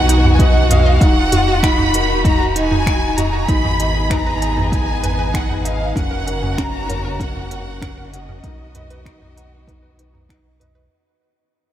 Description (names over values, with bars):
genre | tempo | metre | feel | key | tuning
piano and strings electronica | 97 BPM | 4/4 | straight | unclear | A4 = 443 Hz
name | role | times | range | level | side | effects
warm symphonic violin section | melody | 0.0-10.3 s | Eb5 to Cb6 | -22 LUFS | equal | diffuse ambient delay
warm string quartet | sustained chords | 0.0-10.9 s | Db3 to Ab4 | -25 LUFS | left 1 dB | none
dark baby grand piano | riff | 0.0-10.9 s | Db4 to Ab5 | -23 LUFS | equal | ensemble chorus, diffuse ambient delay
warm sub bass | bass | 0.0-10.9 s | Eb1 to B1 | -20 LUFS | equal | sidechain pumping
analog pluck | arpeggios | 0.1-10.8 s | Db4 to F#5 | -28 LUFS | right 2 dB | chorus, cassette tape, sidechain pumping, diffuse ambient delay
deep house drum kit | drums | 0.1-10.7 s | finger snaps, hi-hat, toms | -23 LUFS | equal | none
electronic kick drum | drums | 0.4-10.4 s | none | -18 LUFS | equal | none
room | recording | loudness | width
moderate huge ambient reverb, RT60 8.4 s | dreamy mix soaked in reverb | -14 LUFS | side -11 dB against mid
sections
0.0-10.9 A section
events
drop 0.0-10.9; fade-out 1.0-10.9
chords
0.0 B; 1.0 Ebm; 3.5 Abm; 6.0 Gb; 8.4 B